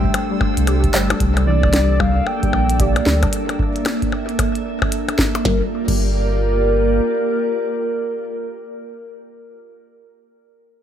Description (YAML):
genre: IDM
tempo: 113 BPM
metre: 4/4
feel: swing 62% on 16ths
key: G dorian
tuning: A4 = 438 Hz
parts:
  - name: warbly nostalgic lead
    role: melody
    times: 0.0-9.2 s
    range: Bb4 to G5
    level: -24 LUFS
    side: left 1 dB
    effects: chorus, analog delay
  - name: glassy FM pad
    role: sustained chords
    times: 0.0-8.7 s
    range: A3 to E5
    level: -23 LUFS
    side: right 1 dB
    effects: ensemble chorus, built-in reverb
  - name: warm sub bass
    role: bass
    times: 0.0-7.0 s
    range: G1 to D2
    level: -18 LUFS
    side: equal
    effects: none
  - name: electronic kick drum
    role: drums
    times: 0.0-6.0 s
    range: none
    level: -22 LUFS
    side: equal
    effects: none
  - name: bubbling stepped-filter texture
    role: texture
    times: 0.0-3.3 s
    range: E6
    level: -35 LUFS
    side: right 3 dB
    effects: chorus, built-in reverb
  - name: glitchy drum kit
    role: drums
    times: 0.1-6.0 s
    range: crash cymbal, hi-hat, percussion blips, snare drum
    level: -22 LUFS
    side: left 2 dB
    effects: overdrive, analog delay
  - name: warbly dusty pluck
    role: arpeggios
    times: 0.3-6.0 s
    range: E3 to G4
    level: -25 LUFS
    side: left 3 dB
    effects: ensemble chorus, vintage 12-bit sampler grit, analog delay
room: light reverb, digital ambience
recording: echo-heavy mix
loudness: -16 LUFS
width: side -9 dB against mid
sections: 0.0-5.5 A section; 5.5-9.7 B section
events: none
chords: 0.0 Am7; 1.2 C13; 5.5 Gm7